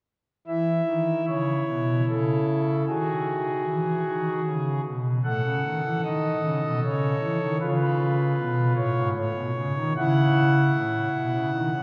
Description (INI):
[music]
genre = classical, chorale-style piece for pipe organ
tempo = 76 BPM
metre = 3/4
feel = rubato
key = C# minor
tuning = A4 = 442 Hz
[part]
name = pipe organ, foundations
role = solo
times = 0.5-11.8 s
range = G#2 to F#5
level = -25 LUFS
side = equal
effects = none
[sound]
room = wet church reverb, RT60 4.0 s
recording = heard from further back in the room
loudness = -25 LUFS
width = mono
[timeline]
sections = 0.5-11.8 A section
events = none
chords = 0.5 C#m; 2.9 G#5/D#; 4.5 C#5; 5.2 F#m/A; 7.6 C#7; 9.1 Aadd9; 10.0 A/C#